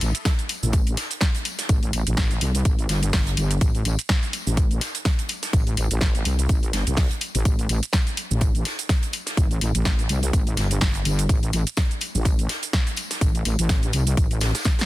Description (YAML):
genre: bass house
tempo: 125 BPM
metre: 4/4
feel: swing 56% on 16ths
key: A minor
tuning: A4 = 439 Hz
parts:
  - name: wobble bass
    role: bass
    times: 0.0-14.5 s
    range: G1 to C2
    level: -22 LUFS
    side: equal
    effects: chorus, tube saturation, sidechain pumping
  - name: house drum kit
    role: drums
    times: 0.0-14.9 s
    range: hi-hat, shaker, snare drum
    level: -27 LUFS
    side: equal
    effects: none
  - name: loose indie drum kit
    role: drums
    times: 0.0-14.9 s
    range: hi-hat, snare drum, tambourine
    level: -34 LUFS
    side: equal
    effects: sidechain pumping on hats, high-pass filter on hats, high-pass filter on snare, sidechain pumping on perc, high-pass filter on perc, high-pass filter on room
  - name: electronic kick drum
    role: drums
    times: 0.3-14.8 s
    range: none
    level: -21 LUFS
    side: equal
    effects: none
room: small room ambience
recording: dense, heavily limited modern master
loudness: -20 LUFS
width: side -17 dB against mid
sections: 0.0-14.9 A section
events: drum fill 14.7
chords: none